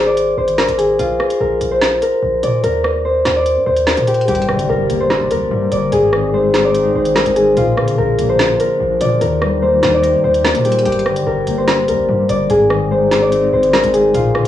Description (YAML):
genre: hip hop, drill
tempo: 146 BPM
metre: 4/4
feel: half-time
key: unclear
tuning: A4 = 438 Hz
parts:
  - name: Celtic harp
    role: melody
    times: 0.0-14.5 s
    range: F4 to D5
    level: -14 LUFS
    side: left 1 dB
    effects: cassette tape, analog delay
  - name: distorted 808-style bass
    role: bass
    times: 0.0-14.3 s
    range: G1 to Bb2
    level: -24 LUFS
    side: equal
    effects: distortion
  - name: drill drum kit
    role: drums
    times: 0.2-14.5 s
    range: hi-hat, rim click, snare drum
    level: -20 LUFS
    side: right 1 dB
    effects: cassette tape
  - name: mellow electric guitar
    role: accompaniment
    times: 4.3-14.5 s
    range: G2 to Eb5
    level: -20 LUFS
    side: left 4 dB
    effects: tremolo
  - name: hollow soft pad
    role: sustained chords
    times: 4.3-14.5 s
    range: Eb3 to D5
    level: -25 LUFS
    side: right 1 dB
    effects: wide subtle chorus
  - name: impact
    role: sound effects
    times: 4.3-5.9 s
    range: none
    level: -28 LUFS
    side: right 1 dB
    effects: none
room: light reverb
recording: home recording on cassette, studio reverb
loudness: -12 LUFS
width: side -11 dB against mid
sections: 0.0-4.3 A section; 4.3-14.5 B section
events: break 0.0-4.3; impact 4.3-5.9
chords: 0.0 Abadd9; 1.0 Bb5; 2.6 Eb5; 4.3 Gm; 5.9 Ab; 7.6 Bb; 9.2 Eb; 10.9 Gm; 12.5 Ab